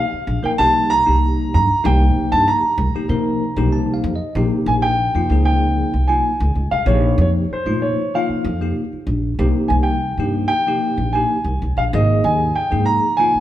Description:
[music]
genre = electric jazz fusion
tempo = 95 BPM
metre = 4/4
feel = straight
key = Bb dorian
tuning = A4 = 440 Hz
[part]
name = warm concert grand piano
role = melody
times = 0.0-13.4 s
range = C5 to Bb5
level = -19 LUFS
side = right 1 dB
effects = none
[part]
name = bell-like tine electric piano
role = accompaniment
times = 0.0-13.4 s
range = C3 to A5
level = -22 LUFS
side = left 2 dB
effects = medium stereo tremolo
[part]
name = upright bass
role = bass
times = 0.1-13.4 s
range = Ab1 to C3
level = -19 LUFS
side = equal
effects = none
[sound]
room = wet large studio reverb, RT60 1.3 s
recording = band playing live in one room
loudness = -15 LUFS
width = side -13 dB against mid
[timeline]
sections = 0.0-4.4 A section; 4.4-13.4 B section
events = tine electric piano fill 3.4-4.4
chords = 0.0 Bbsus2; 5.3 Dbmaj9; 6.9 Bbsus2; 11.9 Abadd9

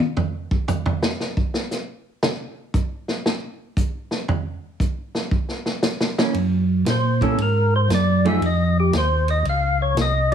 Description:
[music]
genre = soul jazz organ trio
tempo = 116 BPM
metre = 4/4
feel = swing 67% on 8ths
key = unclear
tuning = A4 = 439 Hz
[part]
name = vintage drum kit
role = drums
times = 0.2-10.3 s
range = hi-hat, kick drum, ride cymbal, snare drum, toms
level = -22 LUFS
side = equal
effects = none
[part]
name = vintage hollow-body jazz guitar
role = accompaniment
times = 6.2-10.3 s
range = E3 to Ab4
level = -23 LUFS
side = right 4 dB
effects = none
[part]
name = mellow tonewheel organ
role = bass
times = 6.3-10.3 s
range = C2 to Bb2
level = -19 LUFS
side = right 1 dB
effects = slow rotary speaker
[part]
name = percussive tonewheel organ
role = melody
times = 6.9-10.3 s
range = G4 to F5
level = -22 LUFS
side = left 2 dB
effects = slow rotary speaker, overdrive
[sound]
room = light reverb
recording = heavily compressed radio sound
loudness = -19 LUFS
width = side -8 dB against mid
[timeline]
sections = 0.0-10.3 A section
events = tonewheel organ solo 0.0-10.3; drum solo 0.0-6.4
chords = 0.0 N.C.; 2.2 Bbm; 6.4 Gb; 8.4 F7(no3)

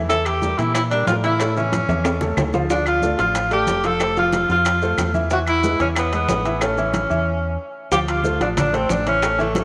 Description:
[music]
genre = latin, salsa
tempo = 184 BPM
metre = 4/4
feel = straight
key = D harmonic minor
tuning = A4 = 441 Hz
[part]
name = warm concert grand piano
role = accompaniment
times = 0.0-9.6 s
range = E3 to F5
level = -26 LUFS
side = equal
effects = none
[part]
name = deep dub fingered electric bass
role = bass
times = 0.0-9.6 s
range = F1 to Bb2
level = -28 LUFS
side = equal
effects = none
[part]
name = warm tenor saxophone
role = melody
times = 0.1-9.6 s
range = A3 to A4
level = -23 LUFS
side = equal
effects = tape echo
[part]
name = bongos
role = percussion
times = 0.1-9.6 s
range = none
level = -33 LUFS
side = equal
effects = none
[part]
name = congas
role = percussion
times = 0.1-9.6 s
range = none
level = -30 LUFS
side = equal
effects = none
[part]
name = maracas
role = percussion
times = 0.1-9.6 s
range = none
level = -40 LUFS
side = equal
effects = none
[part]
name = claves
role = percussion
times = 0.3-6.8 s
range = none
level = -36 LUFS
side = equal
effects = none
[part]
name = timbales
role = percussion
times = 0.3-9.6 s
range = none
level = -32 LUFS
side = equal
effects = none
[sound]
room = moderate plate reverb, RT60 2.5 s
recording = none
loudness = -20 LUFS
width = mono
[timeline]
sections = 0.0-7.9 A section; 7.9-9.6 A section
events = drum fill 1.7-2.7; stop 7.3-7.9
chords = 0.1 Edim; 1.4 A; 2.7 Dm; 4.0 F; 5.3 E; 6.6 A; 7.9 Dm7

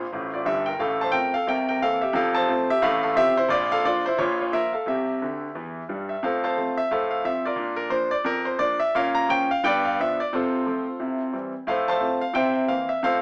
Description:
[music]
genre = jazz, stride piano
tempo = 176 BPM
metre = 4/4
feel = swing 60% on 8ths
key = F major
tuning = A4 = 440 Hz
[part]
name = bright concert grand piano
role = solo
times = 0.0-13.2 s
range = F1 to Bb5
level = -21 LUFS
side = equal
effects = none
[sound]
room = wet studio reverb, RT60 0.6 s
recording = heard from further back in the room, small speaker sound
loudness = -21 LUFS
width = side -32 dB against mid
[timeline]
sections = 0.0-6.2 A section; 6.2-13.2 A section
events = grand piano fill 0.0-0.8, 5.2-6.2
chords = 0.1 Gm13; 0.8 F/A; 1.5 C7; 2.1 F; 2.8 F/A; 3.5 Bb; 4.2 Bb5; 4.9 C; 6.2 F; 6.9 F/A; 7.6 Bb; 8.9 Bbm; 9.6 G7; 10.3 F/C; 11.0 C; 11.7 F/A; 12.4 C7

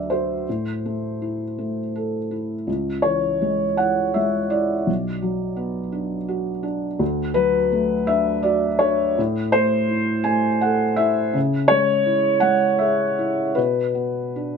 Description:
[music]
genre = neoclassical minimalist piano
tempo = 82 BPM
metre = 3/4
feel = rubato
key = unclear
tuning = A4 = 439 Hz
[part]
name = felt-muted upright piano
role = solo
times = 0.0-14.6 s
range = B1 to G#5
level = -19 LUFS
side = equal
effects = none
[sound]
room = light reverb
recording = none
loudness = -19 LUFS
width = side -6 dB against mid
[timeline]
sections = 0.0-14.6 A section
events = none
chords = 0.5 Am; 2.7 C#m; 4.9 Bm; 7.0 D6; 9.2 Am; 11.3 C#m; 13.6 Bm

